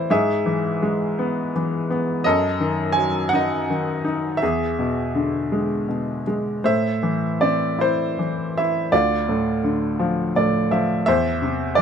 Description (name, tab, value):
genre	classical, lyrical solo piano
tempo	55 BPM (dotted quarters)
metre	6/8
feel	rubato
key	unclear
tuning	A4 = 442 Hz
part	clear upright piano	solo	0.0-11.8 s	D2 to G#5	-19 LUFS	equal	none
room	moderate small room reverb, RT60 0.5 s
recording	none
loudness	-19 LUFS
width	side -7 dB against mid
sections	0.0-11.8 A section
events	upright piano fill 10.0-11.1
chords	0.1 E/G#; 2.2 F#m69; 4.4 E7; 6.6 Am; 8.9 Dm; 11.1 C/E